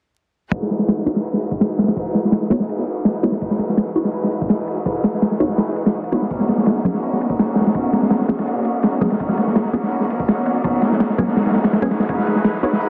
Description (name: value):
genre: drum and bass, jungle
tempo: 166 BPM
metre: 4/4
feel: straight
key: C# minor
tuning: A4 = 440 Hz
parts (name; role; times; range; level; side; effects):
- clear studio string section; sustained chords; 0.5-12.9 s; A#3 to B4; -25 LUFS; equal; none
- crunchy breakbeat drum kit; drums; 0.5-12.9 s; hi-hat, kick drum, ride cymbal, snare drum; -21 LUFS; equal; high-pass filter on kick, high-pass filter on cymbals, high-pass filter on hats, high-pass filter on snare, high-pass filter on room
- filtered dub chord stab; stabs; 1.1-12.7 s; F#3 to C#5; -26 LUFS; equal; phaser, dub echo
room: light reverb, small room ambience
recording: dense, heavily limited modern master, vinyl crackle, low-pass filter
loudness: -19 LUFS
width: mono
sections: 0.5-12.9 A section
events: none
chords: 0.5 C#m11 (rootless); 6.3 G#m11 (rootless); 12.1 C#m11 (rootless)